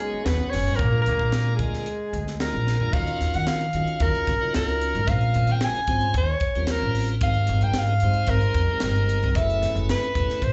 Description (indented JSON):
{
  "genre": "electric jazz fusion",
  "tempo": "112 BPM",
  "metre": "4/4",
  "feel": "straight",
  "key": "unclear",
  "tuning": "A4 = 440 Hz",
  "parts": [
    { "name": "mellow soprano saxophone", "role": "melody", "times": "0.0-10.5 s", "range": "Ab4 to Ab5", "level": "-28 LUFS", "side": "equal", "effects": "slapback echo" },
    { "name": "growling trombone", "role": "second line", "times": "0.0-2.6 s", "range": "Ab3 to Db4", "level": "-35 LUFS", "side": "equal", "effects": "slapback echo" },
    { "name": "tonewheel organ", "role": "accompaniment", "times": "0.0-10.4 s", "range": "Gb3 to Db5", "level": "-35 LUFS", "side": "equal", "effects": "slow rotary speaker, overdrive" },
    { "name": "upright bass", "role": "bass", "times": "0.1-10.5 s", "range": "Fb1 to Eb3", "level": "-26 LUFS", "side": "equal", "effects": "none" },
    { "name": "crisp fusion drum kit", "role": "drums", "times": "0.3-10.5 s", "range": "crash cymbal, hi-hat, kick drum, snare drum, toms", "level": "-31 LUFS", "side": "equal", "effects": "none" }
  ],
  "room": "small room ambience",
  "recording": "live gig heard through the venue's PA, club reverb, nothing above 8.0 kHz",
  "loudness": "-23 LUFS",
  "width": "mono",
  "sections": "0.0-2.9 A section; 2.9-10.5 B section",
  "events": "drum fill 2.7",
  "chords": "0.0 Abm11; 0.8 Bb7; 2.9 Ebm9; 5.1 Bbm9; 6.1 Eb13; 7.2 Abmaj9; 9.4 Gbm11"
}